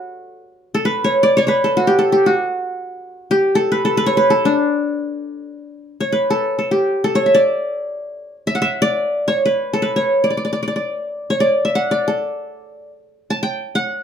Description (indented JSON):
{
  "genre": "turkish",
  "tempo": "free time",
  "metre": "none",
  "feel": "none",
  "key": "unclear",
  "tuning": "A4 = 439 Hz",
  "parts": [
    { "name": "qanun", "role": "solo", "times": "0.0-14.0 s", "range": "D4 to A5", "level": "-16 LUFS", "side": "equal", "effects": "none" }
  ],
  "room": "moderate small room reverb, RT60 0.5 s",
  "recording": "band playing live in one room",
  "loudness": "-15 LUFS",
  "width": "side -8 dB against mid",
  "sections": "0.0-5.8 A section; 5.8-14.0 A section",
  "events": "none",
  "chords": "none",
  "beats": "free time"
}